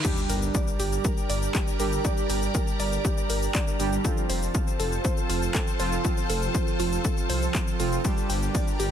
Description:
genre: melodic techno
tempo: 120 BPM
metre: 4/4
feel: straight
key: G minor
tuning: A4 = 440 Hz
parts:
  - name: evolving wavetable pad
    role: sustained chords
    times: 0.4-8.9 s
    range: F4 to Bb5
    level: -33 LUFS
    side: equal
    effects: ensemble chorus, built-in reverb, sidechain pumping
  - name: woody wave-folded pluck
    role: arpeggios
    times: 0.0-8.9 s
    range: F4 to G5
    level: -34 LUFS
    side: right 1 dB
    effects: chorus, sidechain pumping, ping-pong delay
  - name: analog synth brass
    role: stabs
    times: 0.0-8.9 s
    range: F3 to G4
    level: -30 LUFS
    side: right 4 dB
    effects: chorus, sidechain pumping, ping-pong delay
  - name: electronic kick drum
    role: drums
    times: 0.0-8.6 s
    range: none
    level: -26 LUFS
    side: left 1 dB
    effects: overdrive
  - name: techno drum kit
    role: drums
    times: 0.0-8.9 s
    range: crash cymbal, handclaps, hi-hat, ride cymbal, shaker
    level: -33 LUFS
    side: left 4 dB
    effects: overdrive
  - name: riser, reverse cymbal and sub drop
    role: sound effects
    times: 0.0-2.0 s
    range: none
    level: -37 LUFS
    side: equal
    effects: none
  - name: dark detuned saw bass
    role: bass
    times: 0.3-8.9 s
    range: F1 to C2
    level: -28 LUFS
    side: left 1 dB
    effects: tube saturation, sidechain pumping
room: light reverb, digital ambience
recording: none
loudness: -23 LUFS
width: side -9 dB against mid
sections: 0.0-8.9 A section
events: drop 0.0-8.9; impact 0.0-2.0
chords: 0.0 Gm; 4.0 F; 8.0 Gm

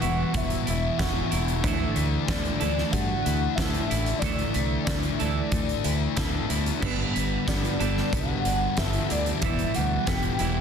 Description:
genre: rock, shoegaze and dream pop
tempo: 92 BPM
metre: 4/4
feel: straight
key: unclear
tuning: A4 = 440 Hz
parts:
  - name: warm velvety synth lead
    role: melody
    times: 0.0-10.6 s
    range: D5 to G5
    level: -32 LUFS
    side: left 1 dB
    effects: chorus, tremolo, tape echo
  - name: semi-hollow electric guitar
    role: arpeggios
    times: 0.0-10.6 s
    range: G3 to A4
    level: -35 LUFS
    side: right 5 dB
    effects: analog chorus, tape echo
  - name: overdriven semi-hollow guitar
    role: riff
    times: 0.0-10.6 s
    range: G2 to E4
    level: -31 LUFS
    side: right 10 dB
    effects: reverse reverb
  - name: thick fuzz guitar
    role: riff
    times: 0.0-10.6 s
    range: E2 to D4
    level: -30 LUFS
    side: left 12 dB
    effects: distortion, analog chorus
  - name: fingered electric bass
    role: bass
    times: 0.0-10.6 s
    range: E1 to G2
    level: -29 LUFS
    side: equal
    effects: none
  - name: huge arena drum kit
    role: drums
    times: 0.0-10.5 s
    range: crash cymbal, hi-hat, kick drum, snare drum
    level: -29 LUFS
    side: equal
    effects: none
room: light reverb, small room reverb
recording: dense, heavily limited modern master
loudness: -23 LUFS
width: side -7 dB against mid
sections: 0.0-10.6 A section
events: none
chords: 0.0 Emadd9; 1.6 Dsus2; 6.8 Gadd9; 9.4 Emadd9

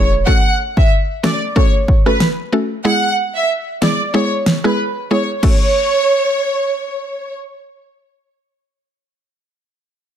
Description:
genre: dancehall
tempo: 93 BPM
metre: 4/4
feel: swing 56% on 16ths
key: F# minor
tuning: A4 = 440 Hz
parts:
  - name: warm symphonic violin section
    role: melody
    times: 0.0-7.3 s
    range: B4 to F#5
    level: -17 LUFS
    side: right 2 dB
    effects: ping-pong delay
  - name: mallet-like synth pluck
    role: accompaniment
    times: 0.0-9.5 s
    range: G#3 to A4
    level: -19 LUFS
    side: equal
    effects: chorus
  - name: deep house drum kit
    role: drums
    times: 0.3-5.6 s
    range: crash cymbal, kick drum, rim click, snare drum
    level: -14 LUFS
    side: equal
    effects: none
room: little or no reverb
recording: dense, heavily limited modern master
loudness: -13 LUFS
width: side -9 dB against mid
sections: 0.0-5.4 A section; 5.4-8.0 B section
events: kick muted 4.1-5.4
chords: 0.3 F#m; 2.9 E; 5.4 F#m

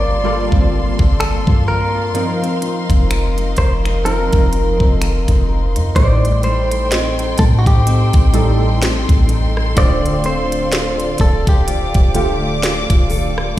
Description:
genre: contemporary R&B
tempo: 63 BPM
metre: 4/4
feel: swing 58% on 16ths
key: unclear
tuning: A4 = 440 Hz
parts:
  - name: direct-recorded clean electric guitar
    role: melody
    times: 0.0-12.9 s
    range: F#4 to D5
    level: -22 LUFS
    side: equal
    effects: ping-pong delay
  - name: warm analog keys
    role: accompaniment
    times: 0.0-13.6 s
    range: A2 to D5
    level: -22 LUFS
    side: right 2 dB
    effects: chorus
  - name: warm studio string section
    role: sustained chords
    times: 0.0-13.6 s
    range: Bb3 to D6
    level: -25 LUFS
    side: left 1 dB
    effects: sidechain pumping
  - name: fingerpicked steel-string acoustic guitar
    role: arpeggios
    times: 0.0-13.6 s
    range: A2 to Bb4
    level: -25 LUFS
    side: left 5 dB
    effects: ping-pong delay
  - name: clean 808-style bass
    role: bass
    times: 0.0-13.6 s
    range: D1 to A2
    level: -17 LUFS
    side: equal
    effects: none
  - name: trap drum kit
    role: drums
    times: 0.5-13.6 s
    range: finger snaps, hi-hat, kick drum, rim click, snare drum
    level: -15 LUFS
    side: equal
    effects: none
  - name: synth chime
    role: texture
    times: 6.9-12.5 s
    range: Eb5 to G5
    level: -32 LUFS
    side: right 2 dB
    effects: ensemble chorus, tremolo, ping-pong delay
room: digital ambience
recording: played on a big sound system in a bare room, stone room reverb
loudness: -13 LUFS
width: side -14 dB against mid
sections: 0.0-6.0 A section; 6.0-13.6 B section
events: none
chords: 0.0 Gm11; 2.1 F7sus4; 6.0 Am7b5; 9.8 Dm7

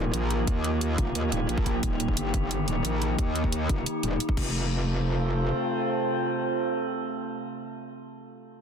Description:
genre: dark technical drum and bass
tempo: 177 BPM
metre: 4/4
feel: straight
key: unclear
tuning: A4 = 442 Hz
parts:
  - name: metallic inharmonic drone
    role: sustained chords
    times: 0.0-8.0 s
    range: C3 to A4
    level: -30 LUFS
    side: equal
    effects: chorus, built-in reverb, sidechain pumping
  - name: metallic wobble bass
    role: bass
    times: 0.0-5.5 s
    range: Eb1 to Eb2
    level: -28 LUFS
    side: equal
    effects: distortion, chorus, tube saturation, sidechain pumping
  - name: warbly tape-like pad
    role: texture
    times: 0.1-8.0 s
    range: Eb4 to A5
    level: -35 LUFS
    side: right 1 dB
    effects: chorus, built-in reverb, sidechain pumping
  - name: drum and bass drum kit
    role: drums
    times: 0.1-4.4 s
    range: crash cymbal, hi-hat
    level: -34 LUFS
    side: equal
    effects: none
  - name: electronic kick drum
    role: drums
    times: 0.5-4.4 s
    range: none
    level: -27 LUFS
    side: equal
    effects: none
room: digital ambience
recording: dense, heavily limited modern master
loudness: -25 LUFS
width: side -7 dB against mid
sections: 0.0-4.5 A section; 4.5-7.3 B section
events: none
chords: 0.0 Ebadd9; 4.4 F

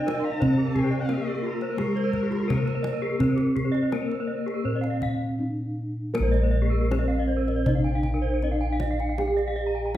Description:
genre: Balinese gamelan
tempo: 79-88 BPM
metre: 4/4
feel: straight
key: Bb slendro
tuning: A4 = 436 Hz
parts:
  - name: gamelan-type bronze metallophone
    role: melody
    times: 0.0-9.9 s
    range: Ab3-45c to Ab4-45c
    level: -29 LUFS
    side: equal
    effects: none
  - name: clear erhu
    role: second line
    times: 0.0-3.2 s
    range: Bb4 to C6+30c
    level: -37 LUFS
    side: left 1 dB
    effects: none
  - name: gamelan-type bronze metallophone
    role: arpeggios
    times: 0.0-9.9 s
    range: Ab4-45c to Bb5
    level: -33 LUFS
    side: left 5 dB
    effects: none
  - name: gamelan-type bossed gongs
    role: bass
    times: 0.0-10.0 s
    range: Bb1 to Bb4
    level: -27 LUFS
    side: equal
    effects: none
  - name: gamelan-type bronze metallophone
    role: arpeggios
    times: 0.1-9.8 s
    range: F4+25c to Ab5-45c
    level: -32 LUFS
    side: right 3 dB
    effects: none
  - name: kendang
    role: percussion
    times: 0.1-10.0 s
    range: none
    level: -29 LUFS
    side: left 1 dB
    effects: none
room: wet recital hall reverb, RT60 1.4 s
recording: recorded in a church or concert hall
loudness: -23 LUFS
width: side -13 dB against mid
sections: 0.0-6.1 A section; 6.1-10.0 B section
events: none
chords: none

